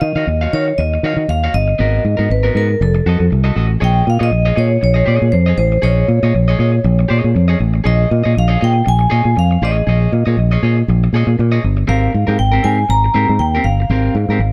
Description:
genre	disco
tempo	119 BPM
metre	4/4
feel	swing 56% on 16ths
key	Bb dorian from 3.8 s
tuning	A4 = 440 Hz
part	vibraphone with medium hard mallets	melody	0.0-14.5 s	A4 to Bb5	-21 LUFS	equal	none
part	electric guitar at the edge of break-up	accompaniment	0.0-14.4 s	B3 to E#5	-25 LUFS	equal	none
part	fingered electric bass	bass	0.0-14.5 s	F1 to D#3	-16 LUFS	equal	none
room	little or no reverb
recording	dark, warm production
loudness	-14 LUFS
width	mono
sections	0.0-3.8 A section; 3.8-14.5 A section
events	none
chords	0.0 D#m9; 1.8 G#m9; 2.8 F7b9; 3.8 Bbm7; 11.9 Abmaj9

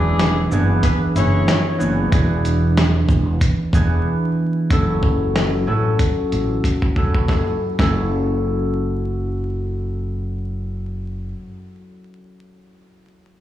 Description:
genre	hip hop, boom-bap hip-hop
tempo	93 BPM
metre	4/4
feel	swing 57% on 16ths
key	F# minor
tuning	A4 = 440 Hz
part	concert harp	accompaniment	0.0-11.5 s	E3 to A4	-21 LUFS	right 1 dB	high-pass filter, low-pass filter
part	mellow horn section	stabs	0.0-1.6 s	G#3 to C#5	-24 LUFS	left 4 dB	high-pass filter, low-pass filter, analog delay
part	upright bass	bass	0.0-11.3 s	E1 to A1	-21 LUFS	equal	none
part	dusty soul sampler-style drum kit	drums	0.2-8.0 s	hi-hat, kick drum, shaker, snare drum	-20 LUFS	equal	none
room	light reverb, small room ambience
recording	played on a big sound system in a bare room, large studio reverb, vinyl crackle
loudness	-16 LUFS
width	side -12 dB against mid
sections	0.0-4.7 A section; 4.7-7.3 B section; 7.3-9.9 C section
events	break 4.1-4.7; drum fill 6.6-7.3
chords	0.0 E7; 4.7 F#m7

